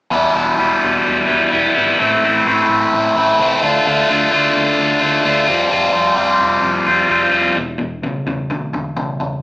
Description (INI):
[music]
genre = rock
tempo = 129 BPM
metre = 4/4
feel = straight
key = unclear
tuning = A4 = 437 Hz
[part]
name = cranked stack guitar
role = riff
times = 0.1-9.4 s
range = E2 to F4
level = -13 LUFS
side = equal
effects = overdrive, phaser
[part]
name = hollow-body short-scale picked electric bass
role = bass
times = 0.1-9.4 s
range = E1 to D2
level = -29 LUFS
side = equal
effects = none
[sound]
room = wet large studio reverb, RT60 0.8 s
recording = band playing live in one room, small speaker sound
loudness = -12 LUFS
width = side -23 dB against mid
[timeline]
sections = 0.1-7.6 A section; 7.6-9.4 B section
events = none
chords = 0.1 Em; 2.0 Am; 3.6 Dm; 5.5 Fsus2; 7.6 E5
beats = | 0.13 0.60 1.06 1.53 | 2.00 2.46 2.93 3.40 | 3.86 4.33 4.79 5.26 | 5.72 6.19 6.65 7.12 | 7.58 8.05 8.51 8.97